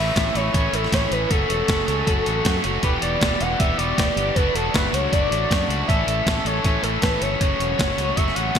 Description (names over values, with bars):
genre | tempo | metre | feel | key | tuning
indie rock | 157 BPM | 4/4 | straight | A mixolydian | A4 = 438 Hz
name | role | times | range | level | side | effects
overdriven synth lead | melody | 0.0-8.6 s | A4 to F#5 | -25 LUFS | equal | ping-pong delay
overdriven electric guitar | riff | 0.0-8.6 s | E2 to A4 | -23 LUFS | equal | wide subtle chorus
growling fingered electric bass | bass | 0.0-8.6 s | E1 to F#2 | -26 LUFS | equal | overdrive
boom bap sampler-style drum kit | drums | 0.2-8.6 s | hi-hat, kick drum, snare drum | -23 LUFS | equal | gated reverb
room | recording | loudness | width
moderate lush hall reverb, RT60 1.9 s | bright 1980s-style digital production | -18 LUFS | side -8 dB against mid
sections
0.0-8.6 A section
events
none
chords
0.0 A; 1.3 F#m; 2.8 Em7; 4.4 D; 5.9 A; 7.4 F#m